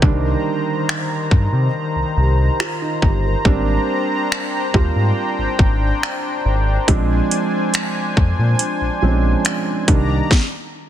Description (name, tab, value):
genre	contemporary R&B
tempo	70 BPM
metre	4/4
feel	straight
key	C minor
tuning	A4 = 439 Hz
part	felt-muted upright piano	accompaniment	0.0-10.3 s	D3 to Bb4	-22 LUFS	right 4 dB	none
part	warm analog pad	sustained chords	0.0-10.3 s	Eb3 to Bb5	-23 LUFS	left 2 dB	chorus, tremolo, sidechain pumping
part	smooth gliding synth bass	bass	0.0-10.2 s	G1 to C3	-18 LUFS	equal	none
part	trap drum kit	drums	0.0-10.5 s	finger snaps, hi-hat, kick drum, snare drum	-17 LUFS	equal	overdrive, vintage 12-bit sampler grit, soft clipping on snare
room	little or no reverb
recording	dense, heavily limited modern master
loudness	-15 LUFS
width	side -11 dB against mid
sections	0.0-10.9 A section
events	stop 10.3-10.9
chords	0.0 Cm7; 3.5 Abmaj9#11; 6.9 Bb9; 9.9 Cm9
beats	| 0.02 0.88 1.74 2.60 | 3.45 4.31 5.17 6.02 | 6.88 7.74 8.60 9.45 | 10.31